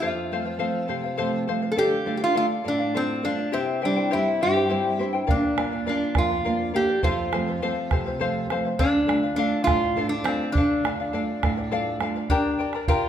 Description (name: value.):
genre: andean folk, Andean ensemble.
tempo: 68 BPM (dotted quarters).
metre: 6/8.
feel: straight.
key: D minor.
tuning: A4 = 438 Hz.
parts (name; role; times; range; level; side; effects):
metal-body resonator slide guitar; melody; 0.0-13.1 s; C4 to A4; -24 LUFS; equal; none.
charango; accompaniment; 0.0-13.1 s; E4 to Bb5; -28 LUFS; left 5 dB; none.
nylon-string guitar; accompaniment; 0.0-12.2 s; F2 to F4; -29 LUFS; right 3 dB; none.
bombo; percussion; 5.3-13.0 s; none; -27 LUFS; right 2 dB; none.
room: wet recital hall reverb, RT60 1.5 s.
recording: minimal, uncompressed stereo recording.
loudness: -22 LUFS.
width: side -9 dB against mid.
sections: 0.0-12.3 A section.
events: none.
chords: 0.0 F; 1.8 Dm; 3.5 C; 5.3 Bb; 7.0 F; 8.8 Dm; 12.3 Gm.